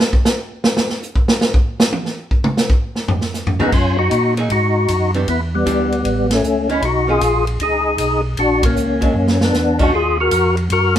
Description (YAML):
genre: soul jazz organ trio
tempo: 155 BPM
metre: 4/4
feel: swing 66% on 8ths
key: F# major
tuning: A4 = 441 Hz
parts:
  - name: vintage drum kit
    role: drums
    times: 0.0-11.0 s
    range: crash cymbal, hi-hat, kick drum, ride cymbal, snare drum, toms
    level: -17 LUFS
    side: equal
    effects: none
  - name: percussive tonewheel organ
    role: melody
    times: 3.6-11.0 s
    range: G3 to A#4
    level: -16 LUFS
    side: left 2 dB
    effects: slow rotary speaker, overdrive, chorus vibrato
  - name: archtop guitar, miked and amplified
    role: accompaniment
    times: 3.6-9.9 s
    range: D#3 to G#4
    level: -23 LUFS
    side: right 4 dB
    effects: none
  - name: mellow tonewheel organ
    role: bass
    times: 3.7-11.0 s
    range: A1 to A#2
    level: -20 LUFS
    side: equal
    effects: overdrive, chorus vibrato, slow rotary speaker
room: moderate stone room reverb, RT60 0.9 s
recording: band playing live in one room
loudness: -14 LUFS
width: side -10 dB against mid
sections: 0.0-3.7 A section; 3.7-11.0 B section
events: tonewheel organ solo 0.0-3.7; drum solo 0.0-3.7; band accent 6.2, 8.6; drum fill 9.1-9.5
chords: 0.0 N.C.; 3.0 F#69; 5.3 Em7; 6.0 A7; 6.8 Bmaj9; 8.4 A#7alt; 9.9 D#madd9